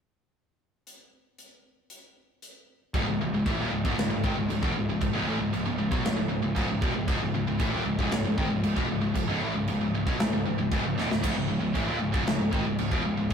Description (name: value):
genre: heavy metal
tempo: 116 BPM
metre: 4/4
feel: straight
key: C# minor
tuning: A4 = 440 Hz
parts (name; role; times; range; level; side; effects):
- big rock drum kit; drums; 0.9-13.3 s; china cymbal, crash cymbal, hi-hat, kick drum, snare drum; -30 LUFS; right 1 dB; none
- high-gain distorted guitar; riff; 2.9-13.3 s; C#2 to F#3; -28 LUFS; left 1 dB; distortion
- fuzz picked electric bass; bass; 2.9-13.3 s; C#1 to B1; -32 LUFS; equal; overdrive
room: light reverb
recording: rough rehearsal-room recording, warm saturation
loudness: -25 LUFS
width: side -7 dB against mid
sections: 0.9-2.9 A section; 2.9-13.3 B section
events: drum fill 11.0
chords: 0.9 N.C.; 2.9 C#m